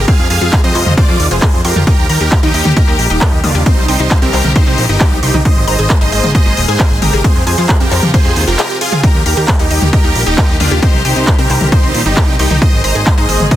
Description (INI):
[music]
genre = uplifting trance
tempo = 134 BPM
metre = 4/4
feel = straight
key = Eb major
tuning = A4 = 440 Hz
[part]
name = big supersaw lead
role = melody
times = 0.0-13.6 s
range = D4 to F5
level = -16 LUFS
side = right 1 dB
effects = phaser, sidechain pumping, dub echo
[part]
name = rich chamber string section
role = sustained chords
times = 0.0-13.6 s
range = C3 to Ab4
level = -22 LUFS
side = left 1 dB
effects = sidechain pumping
[part]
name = analog pluck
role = arpeggios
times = 0.0-13.6 s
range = C4 to Eb6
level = -22 LUFS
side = left 2 dB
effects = chorus, sidechain pumping, dub echo
[part]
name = fat analog bass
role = bass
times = 0.0-13.5 s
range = Eb1 to Ab2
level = -15 LUFS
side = equal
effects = sidechain pumping
[part]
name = big-room dance drum kit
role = drums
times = 0.1-13.6 s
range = handclaps, hi-hat, toms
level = -18 LUFS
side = left 1 dB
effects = overdrive
[part]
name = electronic kick drum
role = drums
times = 0.1-13.6 s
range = none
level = -11 LUFS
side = equal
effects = none
[sound]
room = little or no reverb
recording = dense, heavily limited modern master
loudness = -9 LUFS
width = side -13 dB against mid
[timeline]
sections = 0.0-13.6 A section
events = break 8.6-9.0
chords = 0.1 Fm; 1.9 Eb; 3.7 Cm; 5.5 Absus2; 7.2 Fm; 9.0 Eb; 10.8 Cm; 12.6 Absus2